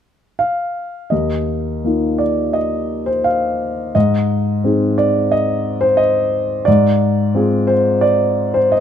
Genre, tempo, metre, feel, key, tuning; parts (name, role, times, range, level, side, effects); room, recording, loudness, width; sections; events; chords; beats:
classical, lyrical solo piano; 82-90 BPM; 4/4; rubato; A4 = 440 Hz
dark grand piano; solo; 0.4-8.8 s; Eb2 to F5; -14 LUFS; equal
light reverb; close, detailed microphones; -14 LUFS; side -9 dB against mid
0.0-1.1 A section; 1.1-8.8 B section
0.0 N.C.; 1.1 Ebsus2; 4.0 Ab; 6.7 Fm/Ab
0.41 | 1.11 1.84 2.54 3.25 | 3.95 4.64 5.32 5.99 | 6.67 7.36 8.04 8.74